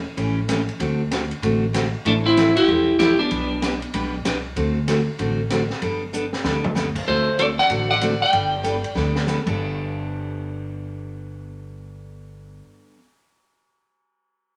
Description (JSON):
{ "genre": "country, western swing", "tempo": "191 BPM", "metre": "4/4", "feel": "swing 62% on 8ths", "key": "G major", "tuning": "A4 = 441 Hz", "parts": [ { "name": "upright bass", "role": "bass", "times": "0.0-12.6 s", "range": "E1 to D2", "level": "-30 LUFS", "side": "equal", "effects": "none" }, { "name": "picked steel-string acoustic guitar", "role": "accompaniment", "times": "0.2-13.0 s", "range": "B2 to B4", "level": "-28 LUFS", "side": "equal", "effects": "none" }, { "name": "swinging big-band drum kit", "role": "drums", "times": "0.2-9.5 s", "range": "crash cymbal, hi-hat, kick drum, ride cymbal, snare drum, toms", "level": "-32 LUFS", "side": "equal", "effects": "none" }, { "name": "clean lap steel guitar", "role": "melody", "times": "2.1-3.8, 7.1-9.2 s", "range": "A3 to G5", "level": "-20 LUFS", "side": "equal", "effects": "none" } ], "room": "wet studio reverb, RT60 0.6 s", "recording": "none", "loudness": "-21 LUFS", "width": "mono", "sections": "0.0-7.1 A section; 7.1-9.6 B section; 9.6-12.1 C section", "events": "drum fill 6.1-6.8, 9.0-9.3", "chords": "0.0 A7; 0.8 D7; 2.1 Am7; 3.3 G/B; 4.6 D7; 5.8 Gadd9; 7.1 D7; 8.3 Gadd9" }